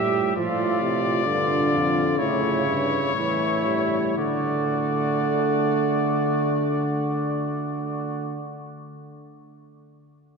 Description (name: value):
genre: classical, imitative canzona for brass ensemble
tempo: 57-70 BPM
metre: 4/4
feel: straight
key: unclear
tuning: A4 = 439 Hz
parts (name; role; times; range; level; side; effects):
- clear trumpet; melody; 0.0-8.4 s; C#5 to E5; -28 LUFS; left 6 dB; none
- warm flugelhorn; second line; 0.0-8.4 s; E4 to G4; -28 LUFS; right 4 dB; none
- mellow euphonium; accompaniment; 0.0-8.4 s; C3 to A3; -26 LUFS; right 2 dB; none
- mellow bass trombone; bass; 0.0-8.4 s; F2 to D3; -27 LUFS; right 1 dB; none
room: wet cathedral reverb, RT60 4.5 s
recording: minimal, uncompressed stereo recording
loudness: -21 LUFS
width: side -4 dB against mid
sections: 0.0-4.2 A section; 4.2-8.4 B section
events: slowing down 0.0-4.2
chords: 0.4 Dm/A; 2.2 A; 4.2 D